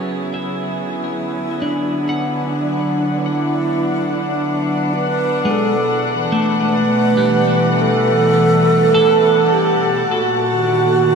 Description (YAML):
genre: ambient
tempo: 52 BPM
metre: 4/4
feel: straight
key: unclear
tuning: A4 = 440 Hz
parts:
  - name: breathy wooden-headed alto flute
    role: melody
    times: 0.0-11.2 s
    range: D4 to B4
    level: -18 LUFS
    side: right 3 dB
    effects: ping-pong delay
  - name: dark studio string section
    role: sustained chords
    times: 0.0-11.2 s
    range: A#2 to F#5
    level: -18 LUFS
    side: left 1 dB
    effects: none
  - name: twelve-string electric guitar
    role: arpeggios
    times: 0.0-11.2 s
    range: G3 to F#5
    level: -22 LUFS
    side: equal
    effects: ping-pong delay
room: wet shimmer reverb, RT60 7.3 s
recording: dark, warm production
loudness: -14 LUFS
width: side -5 dB against mid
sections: 0.0-11.2 A section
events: fade-in on string section 0.0-11.2; fade-in on clean electric guitar 0.0-11.2; fade-in on alto flute 0.0-11.2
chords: 0.0 F#sus2; 0.9 Bm; 5.5 Gsus2; 10.1 D#m